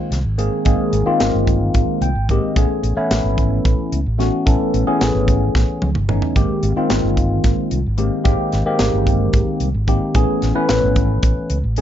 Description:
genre	electric jazz fusion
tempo	221 BPM (eighths)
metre	7/8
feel	straight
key	unclear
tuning	A4 = 441 Hz
part	bright tine electric piano	accompaniment	0.0-11.8 s	Eb3 to G5	-19 LUFS	left 1 dB	phaser
part	fretless electric bass	bass	0.1-11.8 s	G1 to C#2	-19 LUFS	equal	none
part	tight funk drum kit	drums	0.1-11.8 s	hi-hat, kick drum, snare drum, toms	-19 LUFS	right 1 dB	none
room	light reverb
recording	nothing above 7.6 kHz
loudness	-15 LUFS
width	side -10 dB against mid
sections	0.0-11.8 A section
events	tine electric piano fill 1.7-2.6; drum fill 5.5-6.4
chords	0.0 Abmaj9; 2.6 Amaj9; 6.4 Abmaj9; 10.2 Amaj9

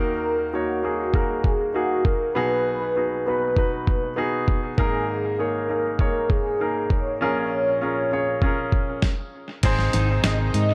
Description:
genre	piano-driven pop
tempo	99 BPM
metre	4/4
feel	straight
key	unclear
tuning	A4 = 440 Hz
part	warm velvety synth lead	melody	0.0-10.7 s	Gb4 to Eb5	-28 LUFS	equal	chorus, tape echo
part	clear baby grand piano	accompaniment	0.0-10.7 s	Ab1 to Db5	-28 LUFS	equal	tape echo
part	dusty soul sampler-style drum kit	drums	1.1-10.7 s	crash cymbal, hi-hat, kick drum, snare drum	-25 LUFS	equal	none
part	warm studio string section	sustained chords	9.6-10.7 s	C3 to Eb4	-35 LUFS	equal	none
part	vintage muted fingered electric bass	bass	9.6-10.7 s	Ab1 to Ab2	-24 LUFS	equal	none
part	fingerpicked steel-string acoustic guitar	riff	9.9-10.1 s	Eb4	-34 LUFS	equal	tape echo
room	light reverb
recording	echo-heavy mix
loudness	-23 LUFS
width	mono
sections	0.0-9.6 A section; 9.6-10.7 B section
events	stop 9.0-9.6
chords	0.0 Ebm; 2.4 B6; 4.8 Absus2; 7.2 Bbm7; 9.6 Ab

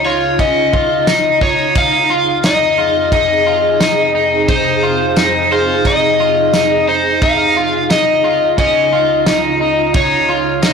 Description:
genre	dream pop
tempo	88 BPM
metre	4/4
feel	straight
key	F minor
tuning	A4 = 440 Hz
part	overdriven slide guitar	melody	0.0-10.7 s	C5 to F5	-15 LUFS	left 4 dB	tape echo
part	ethereal airy pad	sustained chords	0.0-10.7 s	Db2 to Ab4	-19 LUFS	right 3 dB	ensemble chorus, built-in reverb
part	electric guitar at the edge of break-up	arpeggios	0.0-10.7 s	Db4 to F4	-16 LUFS	equal	wide subtle chorus, tape echo
part	loose indie drum kit	drums	0.4-10.7 s	kick drum, ride cymbal, snare drum, tambourine	-18 LUFS	right 1 dB	none
room	wet studio reverb, RT60 0.6 s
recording	blown-out, overdriven recording, overdrive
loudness	-11 LUFS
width	side -6 dB against mid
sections	0.0-10.7 A section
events	none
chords	0.0 Dbadd9; 1.8 Fm7; 7.2 Dbadd9

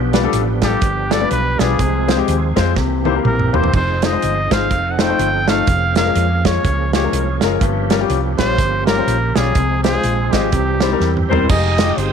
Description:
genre	uptempo gospel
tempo	124 BPM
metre	4/4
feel	swing 59% on 8ths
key	F minor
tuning	A4 = 439 Hz
part	clear upright piano	accompaniment	0.0-11.9 s	G2 to Eb5	-20 LUFS	left 14 dB	none
part	bright tonewheel organ	sustained chords	0.0-12.1 s	E3 to Eb6	-24 LUFS	right 14 dB	slow rotary speaker, overdrive, chorus vibrato
part	hollow-body short-scale fingered electric bass	bass	0.0-12.1 s	E1 to F2	-20 LUFS	equal	none
part	natural country drum kit	drums	0.1-12.1 s	crash cymbal, hi-hat, kick drum, snare drum, toms	-19 LUFS	right 4 dB	none
part	clear trumpet	melody	0.6-11.3 s	G4 to G5	-21 LUFS	right 1 dB	tape echo
part	mellow horn section	melody	11.3-12.1 s	C4 to Eb5	-18 LUFS	equal	none
room	light reverb, studio reverb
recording	1960s-style stereo with parts hard left and right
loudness	-14 LUFS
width	side -7 dB against mid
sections	0.0-11.5 A section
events	drum fill 2.8-3.7, 11.0-11.5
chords	0.0 G7; 1.8 Fm/C; 2.8 C7; 3.7 Fm7; 4.7 F7; 5.7 Bbm7/F; 7.6 Gm7b5; 9.6 Fm/C; 10.5 C; 11.5 Fm9

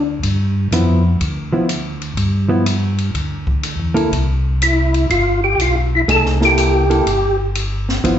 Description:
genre	soul jazz organ trio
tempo	123 BPM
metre	4/4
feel	swing 67% on 8ths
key	unclear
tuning	A4 = 441 Hz
part	percussive tonewheel organ	melody	0.0, 4.6-7.4 s	E4 to A4	-16 LUFS	equal	slow rotary speaker, chorus vibrato, plate reverb, slapback echo
part	mellow tonewheel organ	bass	0.0-8.2 s	G1 to G2	-18 LUFS	equal	slow rotary speaker
part	open jazz drum kit	drums	0.2-8.2 s	hi-hat, kick drum, ride cymbal, snare drum	-25 LUFS	left 1 dB	none
part	hollow-body jazz guitar	accompaniment	0.7-8.2 s	F3 to A4	-18 LUFS	right 1 dB	plate reverb, slapback echo
room	light reverb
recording	live gig heard through the venue's PA, club reverb, nothing above 7.9 kHz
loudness	-14 LUFS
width	side -10 dB against mid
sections	0.0-8.2 A section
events	none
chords	0.0 G13; 4.1 C6

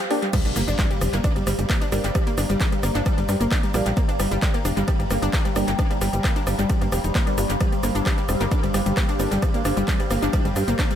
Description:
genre	driving peak-time techno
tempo	132 BPM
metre	4/4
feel	straight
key	G minor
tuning	A4 = 440 Hz
part	analog pluck	riff	0.0-11.0 s	G3 to G4	-26 LUFS	equal	chorus, sidechain pumping, tape echo
part	techno drum kit	drums	0.0-11.0 s	crash cymbal, handclaps, hi-hat, ride cymbal, rim click, shaker	-29 LUFS	equal	sidechain pumping on hats, sidechain pumping on cymbals, sidechain pumping on perc, analog delay
part	ethereal airy pad	texture	0.0-11.0 s	G4 to C6	-32 LUFS	right 1 dB	ensemble chorus, built-in reverb, sidechain pumping
part	filtered dub chord stab	stabs	0.1-9.3 s	G3 to D4	-31 LUFS	right 2 dB	phaser, sidechain pumping, analog delay
part	overtone-sweeping drone	drone	1.2-11.0 s	G2 to G3	-32 LUFS	left 2 dB	chorus, built-in reverb, sidechain pumping
part	electronic kick drum	drums	0.3-10.9 s	none	-23 LUFS	equal	none
part	impact	sound effects	0.3-2.2 s	none	-33 LUFS	equal	none
part	tight sequencer bass	bass	0.6-10.8 s	F1 to G2	-25 LUFS	equal	sidechain pumping
room	light reverb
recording	echo-heavy mix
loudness	-19 LUFS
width	side -10 dB against mid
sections	0.3-11.0 A section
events	break 0.0-0.3; drop 0.3-11.0; impact 0.3-2.2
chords	0.3 Gm

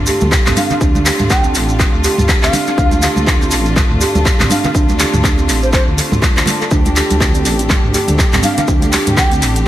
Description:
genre	afro house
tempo	122 BPM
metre	4/4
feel	swing 57% on 16ths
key	D minor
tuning	A4 = 440 Hz
part	rich studio string section	sustained chords	0.0-9.7 s	D3 to G4	-22 LUFS	left 1 dB	sidechain pumping
part	dark detuned saw bass	bass	0.0-9.7 s	A1 to D2	-17 LUFS	equal	sidechain pumping
part	kalimba	arpeggios	0.1-9.4 s	A3 to C5	-19 LUFS	right 3 dB	sidechain pumping, tape echo
part	afro-pop drum kit	drums	0.1-9.6 s	handclaps, hi-hat, toms	-17 LUFS	left 1 dB	tape echo
part	maracas	percussion	0.1-9.6 s	none	-25 LUFS	right 4 dB	tape echo
part	congas	percussion	0.2-9.4 s	none	-22 LUFS	right 2 dB	none
part	electronic kick drum	drums	0.3-9.3 s	none	-14 LUFS	equal	overdrive
part	bass bansuri	melody	0.6-9.3 s	C5 to G5	-22 LUFS	left 1 dB	tape echo
room	light reverb, studio reverb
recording	echo-heavy mix, lossy compression artefacts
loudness	-11 LUFS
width	side -13 dB against mid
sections	0.0-9.7 A section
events	none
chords	0.0 Dm

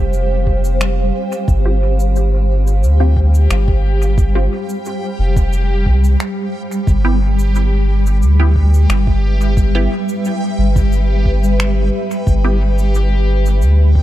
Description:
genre	ambient dub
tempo	89 BPM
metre	4/4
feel	straight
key	G mixolydian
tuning	A4 = 445 Hz
part	granular cloud pad	sustained chords	0.0-14.0 s	G3 to F5	-21 LUFS	equal	built-in reverb
part	soft dub sub bass	bass	0.0-14.0 s	F1 to D2	-13 LUFS	equal	none
part	backwards swelling texture	texture	0.0-14.0 s	G4 to G5	-28 LUFS	left 2 dB	built-in reverb
part	electronic shaker and finger snaps	drums	0.1-13.8 s	none	-27 LUFS	equal	dub echo
part	electronic kick drum	drums	0.5-14.0 s	none	-15 LUFS	equal	none
part	filtered dub chord stab	stabs	1.7-12.6 s	B3 to G4	-25 LUFS	right 1 dB	phaser, dub echo
room	little or no reverb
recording	dark, warm production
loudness	-12 LUFS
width	side -14 dB against mid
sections	0.0-14.0 A section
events	none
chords	0.0 G7sus4; 6.9 Em/G

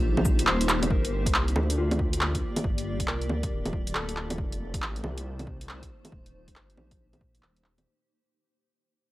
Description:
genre	future garage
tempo	138 BPM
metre	4/4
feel	swing 64% on 16ths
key	G minor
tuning	A4 = 440 Hz
part	mellow electric guitar	accompaniment	0.0-4.6 s	F4 to C5	-37 LUFS	left 2 dB	lush chorus, sidechain pumping, tape echo
part	granular cloud pad	sustained chords	0.0-7.8 s	A3 to D5	-35 LUFS	left 1 dB	built-in reverb, sidechain pumping
part	swelling detuned saw bass	bass	0.0-7.8 s	D1 to D2	-30 LUFS	equal	sidechain pumping
part	deep house drum kit	drums	0.2-7.8 s	bongos, cabasa, handclaps, hi-hat	-28 LUFS	equal	overdrive
part	electronic kick drum	drums	0.3-7.3 s	none	-30 LUFS	equal	overdrive
room	little or no reverb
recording	dry, gritty hardware recording, vinyl crackle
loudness	-25 LUFS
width	side -17 dB against mid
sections	0.9-7.9 A section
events	drum fill 0.7; fade-out 0.9-7.9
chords	0.0 Cm7; 0.9 Gm7; 4.4 F7; 6.1 Cm7/Eb

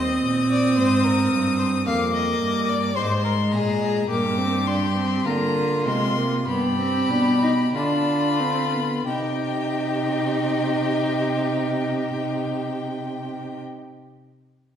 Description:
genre	classical, baroque-style fugue for string quartet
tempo	44-57 BPM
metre	4/4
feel	straight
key	C minor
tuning	A4 = 440 Hz
part	rich violin	melody	0.0-13.6 s	G5 to Eb6	-28 LUFS	left 5 dB	none
part	rich violin	second line	0.0-13.6 s	F4 to F5	-30 LUFS	left 4 dB	none
part	rich viola	accompaniment	0.0-13.6 s	Ab3 to Eb4	-24 LUFS	right 1 dB	none
part	rich cello	bass	0.0-13.6 s	Eb2 to D3	-25 LUFS	right 2 dB	none
room	wet recital hall reverb, RT60 1.6 s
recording	heard from further back in the room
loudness	-20 LUFS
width	side -9 dB against mid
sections	0.0-9.1 A section; 9.1-14.5 B section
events	slowing down 0.0-9.1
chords	0.0 Cm/Eb; 1.9 Fm; 4.1 C5/G; 6.5 G7; 9.1 Cm

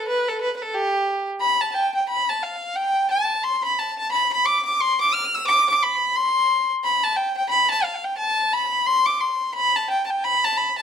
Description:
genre	celtic folk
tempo	176 BPM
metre	4/4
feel	swing 60% on 8ths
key	G mixolydian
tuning	A4 = 440 Hz
part	warm fiddle	solo	0.0-10.8 s	G4 to F6	-19 LUFS	left 1 dB	slapback echo
room	moderate studio reverb, RT60 0.6 s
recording	close, detailed microphones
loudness	-19 LUFS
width	side -7 dB against mid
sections	0.0-1.4 A section; 1.4-10.8 A section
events	none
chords	none

